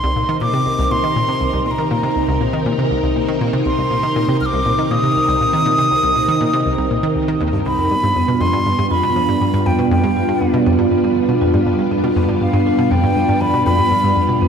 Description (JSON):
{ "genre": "ambient, sequencer-driven space music", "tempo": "120 BPM", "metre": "4/4", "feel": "straight", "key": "C minor", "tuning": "A4 = 441 Hz", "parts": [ { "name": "wooden flute", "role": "melody", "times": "0.0-14.5 s", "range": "F5 to F6", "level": "-19 LUFS", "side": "equal", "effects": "tape echo" }, { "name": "string machine, full ensemble", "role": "sustained chords", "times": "0.0-14.5 s", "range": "C3 to Bb4", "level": "-19 LUFS", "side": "equal", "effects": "ensemble chorus" }, { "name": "analog pluck", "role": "riff", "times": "0.0-14.5 s", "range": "C2 to Eb3", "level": "-19 LUFS", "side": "equal", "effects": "chorus, tape echo" }, { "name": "vibraphone with medium mallets", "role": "arpeggios", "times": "7.9-14.5 s", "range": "B3 to F4", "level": "-21 LUFS", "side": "moving between left 1 dB and right 7 dB", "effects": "auto-pan, tape echo" } ], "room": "wet concert hall reverb, RT60 2.0 s", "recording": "none", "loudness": "-14 LUFS", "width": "side -7 dB against mid", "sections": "0.0-14.5 A section", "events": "none", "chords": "0.0 Cm7; 7.9 G7" }